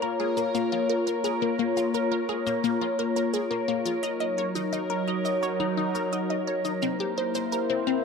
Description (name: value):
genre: ambient, sequencer-driven space music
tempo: 86 BPM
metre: 4/4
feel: straight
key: Bb minor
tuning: A4 = 440 Hz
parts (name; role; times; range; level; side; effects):
- sweeping resonant pad; sustained chords; 0.0-8.0 s; Gb3 to Db5; -27 LUFS; left 1 dB; chorus
- resonant blip pluck; riff; 0.0-8.0 s; Bb3 to Eb5; -29 LUFS; left 3 dB; phaser, ping-pong delay
- claves and cabasa; percussion; 0.0-8.0 s; none; -42 LUFS; left 3 dB; ping-pong delay
- bubbling stepped-filter texture; texture; 0.0-8.0 s; Bb4; -35 LUFS; equal; chorus, built-in reverb
room: wet plate reverb, RT60 2.9 s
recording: dark, warm production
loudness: -24 LUFS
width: side -5 dB against mid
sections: 0.0-8.0 A section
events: none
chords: 0.0 Bbm; 4.0 Ebm7; 6.8 C7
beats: 0.55 | 1.25 1.94 2.64 3.34 | 4.04 4.73 5.43 6.13 | 6.83 7.53